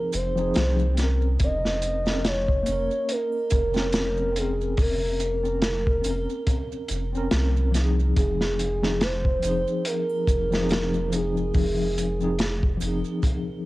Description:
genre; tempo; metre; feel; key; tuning
trip hop; 71 BPM; 4/4; swing 57% on 16ths; F minor; A4 = 437 Hz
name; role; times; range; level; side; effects
pure breathy sine lead; melody; 0.0-12.8 s; Ab4 to Eb5; -27 LUFS; right 1 dB; chorus, cassette tape, tape echo
tine electric piano; accompaniment; 0.0-13.7 s; F3 to Bb4; -29 LUFS; left 1 dB; medium stereo tremolo, vintage 12-bit sampler grit
soft dub sub bass; bass; 0.1-13.0 s; F1 to C2; -26 LUFS; equal; none
crunchy breakbeat drum kit; drums; 0.1-13.5 s; hi-hat, kick drum, snare drum; -26 LUFS; equal; none
maracas and triangle; percussion; 0.1-13.4 s; none; -44 LUFS; right 10 dB; none
room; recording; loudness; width
studio ambience; home recording on cassette; -22 LUFS; side -18 dB against mid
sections
0.0-13.7 A section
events
none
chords
0.0 Fm7

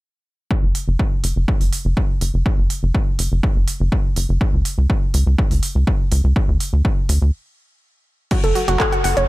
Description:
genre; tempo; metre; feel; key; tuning
melodic techno; 123 BPM; 4/4; straight; F# minor; A4 = 438 Hz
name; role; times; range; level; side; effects
electronic kick drum; drums; 0.5-8.9 s; none; -19 LUFS; equal; none
tight sequencer bass; bass; 0.6-9.3 s; F#1 to D2; -17 LUFS; equal; sidechain pumping
techno drum kit; drums; 0.8-9.3 s; crash cymbal, handclaps, hi-hat; -25 LUFS; right 2 dB; sidechain pumping on hats, sidechain pumping on cymbals
woody wave-folded pluck; arpeggios; 8.3-9.2 s; F#4 to F#5; -18 LUFS; right 1 dB; chorus, sidechain pumping, analog delay
room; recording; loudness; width
little or no reverb; none; -16 LUFS; side -19 dB against mid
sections
0.5-8.3 A section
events
filter sweep on analog synth bass 0.5-8.3; stop 7.3-8.3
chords
0.5 N.C.; 8.3 F#m

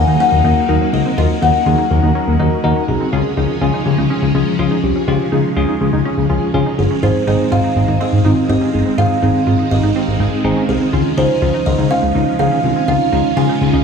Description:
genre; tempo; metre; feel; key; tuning
pop; 123 BPM; 4/4; straight; unclear; A4 = 440 Hz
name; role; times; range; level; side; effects
buzzing kalimba; melody; 0.0-2.1, 6.8-13.8 s; Ab4 to Ab5; -19 LUFS; left 1 dB; shimmer reverb, digital delay
bright tine electric piano; accompaniment; 0.0-13.8 s; C4 to Bb5; -20 LUFS; left 1 dB; phaser, shimmer reverb
phased string machine; sustained chords; 0.0-13.8 s; Eb3 to F4; -20 LUFS; right 1 dB; ensemble chorus, phaser, shimmer reverb
wide unison pluck; arpeggios; 0.0-13.8 s; C4 to F4; -25 LUFS; right 4 dB; shimmer reverb, digital delay
fat analog bass; bass; 0.0-13.8 s; G1 to Eb2; -15 LUFS; left 1 dB; none
room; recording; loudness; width
moderate plate reverb, RT60 2.6 s; small room ambience; -13 LUFS; side -6 dB against mid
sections
0.0-7.0 A section; 7.0-13.8 B section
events
tine electric piano fill 2.2-3.1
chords
0.0 Ebm; 3.1 Dbadd9

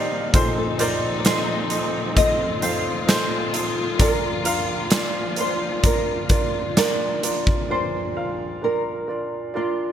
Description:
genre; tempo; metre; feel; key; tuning
pop ballad; 65 BPM; 4/4; straight; Bb major; A4 = 440 Hz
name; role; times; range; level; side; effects
warm upright piano; accompaniment; 0.0-9.9 s; Bb1 to F5; -25 LUFS; right 1 dB; none
dark studio string section; sustained chords; 0.0-7.7 s; Bb2 to F4; -28 LUFS; left 3 dB; none
nylon-string guitar; melody; 0.3-9.9 s; F4 to F5; -26 LUFS; equal; analog chorus
huge arena drum kit; drums; 0.3-7.7 s; hi-hat, kick drum, snare drum; -23 LUFS; equal; gated reverb
room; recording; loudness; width
moderate lush hall reverb, RT60 2.5 s; bright 1980s-style digital production; -19 LUFS; side -9 dB against mid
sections
0.0-7.7 A section; 7.7-9.9 B section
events
none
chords
0.3 F7/Bb; 4.0 Bb

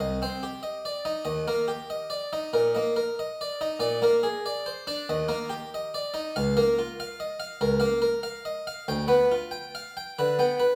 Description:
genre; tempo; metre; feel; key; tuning
classical, baroque-style suite movement for harpsichord; 94 BPM; 4/4; rubato; unclear; A4 = 440 Hz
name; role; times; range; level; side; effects
harpsichord; solo; 0.0-10.8 s; C2 to G5; -27 LUFS; equal; none
room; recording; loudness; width
moderate recital hall reverb, RT60 1.4 s; none; -28 LUFS; mono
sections
0.0-10.8 A section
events
none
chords
0.0 Cm; 1.2 Eb5; 3.8 Bb7; 5.1 Eb; 6.4 Bbm/Db; 8.9 G7/D

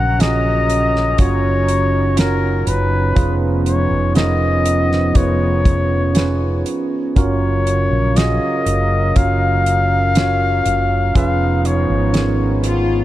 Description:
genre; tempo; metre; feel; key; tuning
pop ballad; 60 BPM; 4/4; straight; unclear; A4 = 440 Hz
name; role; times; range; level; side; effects
warm flugelhorn; melody; 0.0-12.6 s; Bb4 to Gb5; -20 LUFS; left 3 dB; ping-pong delay
tine electric piano; accompaniment; 0.0-13.0 s; Db3 to Db5; -21 LUFS; right 5 dB; none
warm analog pad; sustained chords; 0.0-13.0 s; F3 to Bb5; -25 LUFS; equal; chorus
mellow fretless electric bass; bass; 0.0-13.0 s; F1 to Bb1; -18 LUFS; equal; none
damped 70s drum kit; drums; 0.2-12.9 s; hi-hat, kick drum, snare drum; -16 LUFS; equal; none
dark chamber cello section; second line; 12.6-13.0 s; F4; -19 LUFS; left 4 dB; none
room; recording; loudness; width
small room reverb; dark, warm production; -14 LUFS; side -14 dB against mid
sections
0.0-13.0 A section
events
none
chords
0.0 Gbmaj7; 3.2 Db7/F; 7.2 Gbmaj7; 11.2 Db7/F

